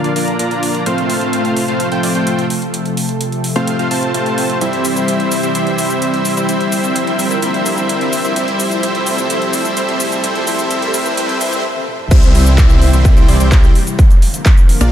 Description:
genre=EDM, festival progressive house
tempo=128 BPM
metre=4/4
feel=straight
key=F major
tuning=A4 = 440 Hz
part: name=lush unison pad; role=sustained chords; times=0.0-14.9 s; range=C3 to Bb4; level=-22 LUFS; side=equal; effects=chorus, phaser, sidechain pumping
part: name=dense compressed supersaw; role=riff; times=0.0-14.9 s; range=G3 to Bb5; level=-16 LUFS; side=equal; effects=sidechain pumping, low-pass filter, ping-pong delay
part: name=big-room dance drum kit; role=drums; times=0.0-14.9 s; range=crash cymbal, handclaps, hi-hat, shaker, toms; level=-23 LUFS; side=equal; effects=overdrive, studio ambience
part: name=riser, swell and downlifter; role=sound effects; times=9.0-14.9 s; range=none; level=-27 LUFS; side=left 1 dB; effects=none
part: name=wide detuned saw bass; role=bass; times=12.1-14.9 s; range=Bb1 to C2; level=-12 LUFS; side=equal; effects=chorus, sidechain pumping
part: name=electronic kick drum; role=drums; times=12.1-14.6 s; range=none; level=-9 LUFS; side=equal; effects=overdrive, studio ambience
room=light reverb, digital ambience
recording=high-pass filter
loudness=-12 LUFS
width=side -10 dB against mid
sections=0.0-12.1 A section; 12.1-14.9 B section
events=build-up 0.0-12.1; filter sweep on supersaw synth 0.0-12.1; swell 11.2-12.1; break 11.6-12.1; drum fill 11.8-12.1; drop 12.1-14.9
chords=0.0 Bb; 0.9 F; 4.6 C; 6.5 Bb; 8.4 F; 12.1 C; 14.0 Bb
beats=0.39 | 0.86 1.33 1.80 2.27 | 2.74 3.21 3.67 4.14 | 4.61 5.08 5.55 6.02 | 6.49 6.96 7.42 7.89 | 8.36 8.83 9.30 9.77 | 10.24 10.71 11.18 11.64 | 12.11 12.58 13.05 13.52 | 13.99 14.46

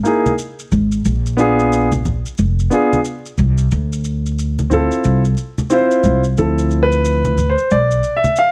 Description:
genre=hip hop, jazz-hop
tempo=90 BPM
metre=4/4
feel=swing 61% on 16ths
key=D dorian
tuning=A4 = 440 Hz
part: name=dark baby grand piano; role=accompaniment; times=0.0-8.5 s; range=F3 to F5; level=-17 LUFS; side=equal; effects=none
part: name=maracas and congas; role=percussion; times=0.1-8.5 s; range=none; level=-26 LUFS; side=equal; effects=none
part: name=upright bass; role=bass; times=0.7-8.0 s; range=F1 to D2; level=-19 LUFS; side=equal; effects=none
room=light reverb, studio reverb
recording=dark, warm production, vinyl crackle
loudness=-16 LUFS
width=mono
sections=0.0-6.4 A section; 6.4-8.5 B section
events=grand piano solo 6.4-8.5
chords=0.0 C7#9b13 (rootless); 1.0 Bb7b9; 3.7 Dm9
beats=0.38 | 1.05 1.72 2.38 3.05 | 3.71 4.38 5.05 5.71 | 6.38 7.05 7.71 8.38

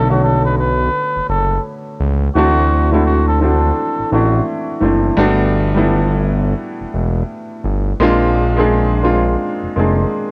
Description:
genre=hip hop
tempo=85 BPM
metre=4/4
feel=swing 62% on 16ths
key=unclear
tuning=A4 = 445 Hz
part: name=trumpet with cup mute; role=melody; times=0.0-4.4 s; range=E4 to B4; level=-21 LUFS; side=equal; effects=analog delay
part: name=warm upright piano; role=accompaniment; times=0.0-10.3 s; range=D3 to D5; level=-19 LUFS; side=equal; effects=cassette tape
part: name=smooth synth bass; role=bass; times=0.0-10.1 s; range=E1 to D2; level=-19 LUFS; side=equal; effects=none
room=moderate studio ambience, RT60 0.5 s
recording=worn, warbling old tape, cassette tape, warbly pitch drift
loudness=-16 LUFS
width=mono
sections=0.0-10.3 A section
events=none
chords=0.0 Bm7; 2.3 D7; 5.2 Gmaj7; 8.0 A#9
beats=0.22 0.93 1.63 | 2.34 3.04 3.75 4.46 | 5.16 5.87 6.57 7.28 | 7.99 8.69 9.40 10.10

